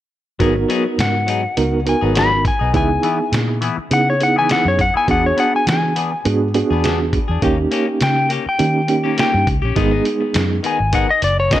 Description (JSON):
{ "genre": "straight-eighth soul blues", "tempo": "102 BPM", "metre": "4/4", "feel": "swing 54% on 16ths", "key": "G# minor", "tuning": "A4 = 439 Hz", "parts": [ { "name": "bright reed electric piano", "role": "accompaniment", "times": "0.4-10.6 s", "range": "G#3 to A#4", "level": "-20 LUFS", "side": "right 4 dB", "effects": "fast tremolo" }, { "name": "semi-hollow electric guitar", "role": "stabs", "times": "0.4-11.6 s", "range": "D#3 to G#4", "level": "-24 LUFS", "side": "left 6 dB", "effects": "phaser, tape echo" }, { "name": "vintage muted fingered electric bass", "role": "bass", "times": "0.4-11.6 s", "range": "F#1 to E3", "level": "-20 LUFS", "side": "equal", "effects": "none" }, { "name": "lo-fi sampler-style drum kit", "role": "drums", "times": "0.4-11.6 s", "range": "hi-hat, kick drum, snare drum", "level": "-22 LUFS", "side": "equal", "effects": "none" }, { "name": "clean lap steel guitar", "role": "melody", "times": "1.0-11.6 s", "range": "C#5 to B5", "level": "-18 LUFS", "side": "left 2 dB", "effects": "none" } ], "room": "light reverb, digital ambience", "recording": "none", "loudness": "-14 LUFS", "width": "side -13 dB against mid", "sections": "0.4-9.8 A section; 9.8-11.6 B section", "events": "none", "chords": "0.4 G#m7; 2.7 C#m7; 5.1 E7; 7.4 D#7; 9.8 G#m" }